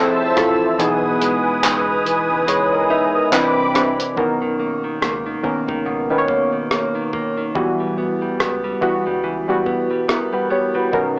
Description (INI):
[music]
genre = contemporary R&B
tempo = 71 BPM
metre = 4/4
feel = swing 58% on 16ths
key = unclear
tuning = A4 = 439 Hz
[part]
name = warm analog keys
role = accompaniment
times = 0.0-11.2 s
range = D#3 to E5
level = -19 LUFS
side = equal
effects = chorus, cassette tape, plate reverb
[part]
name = warm analog pad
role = sustained chords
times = 0.0-4.2, 10.9-11.2 s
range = C4 to E6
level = -19 LUFS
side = equal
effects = chorus, cassette tape
[part]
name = direct-recorded clean electric guitar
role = arpeggios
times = 0.0-11.2 s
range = F2 to D#4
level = -23 LUFS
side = equal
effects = spring reverb, cassette tape, tape echo, plate reverb
[part]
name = round analog bass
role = bass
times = 0.0-11.2 s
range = F1 to C#2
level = -37 LUFS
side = equal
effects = none
[part]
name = dusty soul sampler-style drum kit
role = drums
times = 0.4-11.2 s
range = handclaps, hi-hat, kick drum, rim click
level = -22 LUFS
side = equal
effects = cassette tape
[sound]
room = moderate small room ambience, RT60 0.5 s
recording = home recording on cassette, small speaker sound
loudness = -16 LUFS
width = side -29 dB against mid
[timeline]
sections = 0.0-4.2 A section; 4.2-11.2 B section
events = kick muted 0.8-4.2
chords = 0.0 Fmaj7; 0.8 Emaj7/B; 3.3 Cmaj9; 4.2 Bmaj9; 7.6 Emadd9/B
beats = | 0.79 1.64 2.48 3.33 | 4.17 5.02 5.86 6.71 | 7.55 8.40 9.24 10.09 | 10.93